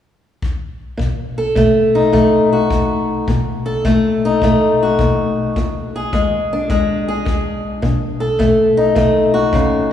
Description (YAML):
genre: acoustic country blues, solo or duo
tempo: 105 BPM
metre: 4/4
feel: swing 68% on 8ths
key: unclear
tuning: A4 = 440 Hz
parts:
  - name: kick drum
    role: drums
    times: 0.4-9.7 s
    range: none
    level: -23 LUFS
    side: left 2 dB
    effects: none
  - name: fingerpicked steel-string acoustic guitar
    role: accompaniment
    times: 1.0-9.9 s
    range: E2 to A4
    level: -14 LUFS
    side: left 1 dB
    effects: none
room: wet church reverb, RT60 3.5 s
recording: recorded in a church or concert hall, small room reverb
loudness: -13 LUFS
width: side -10 dB against mid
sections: 1.0-9.9 A section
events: none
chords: 0.0 N.C.; 1.0 B7; 5.5 E7; 7.8 B7